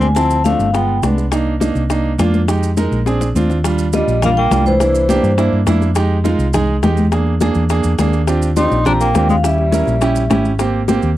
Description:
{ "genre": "Afro-Cuban jazz", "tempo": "207 BPM", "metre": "4/4", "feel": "straight", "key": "C minor, Eb major from 3.6 s", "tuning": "A4 = 440 Hz", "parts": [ { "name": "vibraphone with medium hard mallets", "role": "melody", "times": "0.0-1.0, 3.9-5.5, 8.6-10.4 s", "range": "C5 to C6", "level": "-18 LUFS", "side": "equal", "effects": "none" }, { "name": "breathy tenor saxophone", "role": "second line", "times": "0.0-1.0, 3.9-5.5, 8.6-10.4 s", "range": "Fb3 to Eb4", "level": "-21 LUFS", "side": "left 5 dB", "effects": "none" }, { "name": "clear concert grand piano", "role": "accompaniment", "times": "0.0-11.1 s", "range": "F3 to Bb4", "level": "-18 LUFS", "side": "right 4 dB", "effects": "none" }, { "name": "hollow-body short-scale fingered electric bass", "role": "bass", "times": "0.0-11.2 s", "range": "G1 to G2", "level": "-17 LUFS", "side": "equal", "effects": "none" }, { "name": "congas", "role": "percussion", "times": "0.0-11.0 s", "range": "none", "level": "-21 LUFS", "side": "left 2 dB", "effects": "none" }, { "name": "maracas", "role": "percussion", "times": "0.0-11.2 s", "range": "none", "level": "-33 LUFS", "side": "right 8 dB", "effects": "none" }, { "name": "bongos", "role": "percussion", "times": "0.2-11.0 s", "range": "none", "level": "-24 LUFS", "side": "left 7 dB", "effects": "none" } ], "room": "light reverb", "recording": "dry, close 1970s-style studio recording", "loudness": "-13 LUFS", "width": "side -14 dB against mid", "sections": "0.0-3.6 A section; 3.6-11.2 B section", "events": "drum fill 3.1-3.6", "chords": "0.2 Dm7; 0.7 G7b9; 1.3 Cm7; 2.5 Fm7; 3.1 Bb7; 3.6 Ebmaj7; 4.8 C7; 6.0 Fm9; 7.1 E7#11; 8.3 Ebmaj13; 9.4 Eb7b9; 10.6 Abmaj9" }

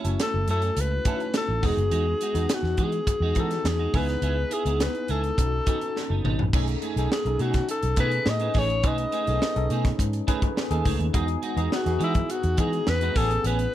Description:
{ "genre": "polished 1980s jazz-funk pop", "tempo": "104 BPM", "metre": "4/4", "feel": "straight", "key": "unclear", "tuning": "A4 = 445 Hz", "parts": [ { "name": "tine electric piano", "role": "accompaniment", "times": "0.0-13.7 s", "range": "A3 to B4", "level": "-31 LUFS", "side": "left 2 dB", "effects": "medium stereo tremolo, analog chorus" }, { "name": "clean electric guitar", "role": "riff", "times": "0.0-13.7 s", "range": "G#3 to A4", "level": "-33 LUFS", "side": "right 7 dB", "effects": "analog chorus" }, { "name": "vintage muted fingered electric bass", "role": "bass", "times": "0.0-13.7 s", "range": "E1 to E3", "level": "-26 LUFS", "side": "equal", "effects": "none" }, { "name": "crisp fusion drum kit", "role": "drums", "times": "0.0-13.7 s", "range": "crash cymbal, hi-hat, kick drum, snare drum, toms", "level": "-27 LUFS", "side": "equal", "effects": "none" }, { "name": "breathy alto saxophone", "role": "melody", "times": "0.2-13.7 s", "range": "E4 to D#5", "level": "-27 LUFS", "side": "left 2 dB", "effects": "slapback echo" } ], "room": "little or no reverb", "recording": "none", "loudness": "-22 LUFS", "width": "side -12 dB against mid", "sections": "0.0-6.5 A section; 6.5-13.7 B section", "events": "drum fill 6.0-6.5", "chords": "0.0 B9sus4/F#; 1.6 Emaj9; 3.9 C#m7; 5.4 B7; 6.5 B13; 11.1 Emaj9; 13.2 Amaj9" }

